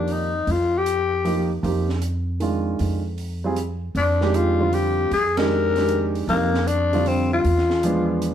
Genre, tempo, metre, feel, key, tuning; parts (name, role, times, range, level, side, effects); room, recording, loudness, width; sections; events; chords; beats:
modal jazz; 155 BPM; 3/4; swing 67% on 8ths; F dorian; A4 = 438 Hz
growling tenor saxophone; melody; 0.0-1.5, 4.0-8.3 s; Bb3 to Bb4; -21 LUFS; left 4 dB
warm grand piano; accompaniment; 0.0-8.3 s; C3 to Ab4; -24 LUFS; right 4 dB
upright bass; bass; 0.0-8.3 s; E2 to F2; -25 LUFS; right 1 dB
open jazz drum kit; drums; 0.1-8.3 s; hi-hat, ride cymbal, snare drum; -34 LUFS; right 4 dB
moderate large studio reverb, RT60 0.9 s; band playing live in one room; -19 LUFS; side -10 dB against mid
0.0-8.3 A section
band accent 5.3
0.0 Fm11; 7.4 E7b9
0.08 | 0.47 0.86 1.25 | 1.63 2.02 2.41 | 2.80 3.18 3.57 | 3.96 4.35 4.73 | 5.12 5.51 5.89 | 6.28 6.67 7.06 | 7.44 7.83 8.22